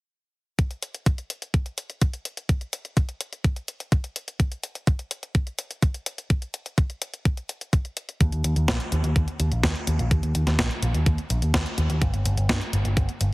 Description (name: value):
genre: italo disco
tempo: 126 BPM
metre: 4/4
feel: straight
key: unclear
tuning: A4 = 440 Hz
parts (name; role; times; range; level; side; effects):
- clean 12-bit digital drum machine; drums; 0.6-13.3 s; hi-hat, snare drum; -29 LUFS; equal; overdrive
- electronic kick drum; drums; 0.6-13.1 s; none; -22 LUFS; equal; overdrive
- picked electric bass with an envelope filter; bass; 8.2-13.3 s; G1 to G2; -23 LUFS; equal; tube saturation
room: light reverb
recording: heavily compressed radio sound, multiband compression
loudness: -23 LUFS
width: side -22 dB against mid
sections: 0.6-13.3 A section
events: none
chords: none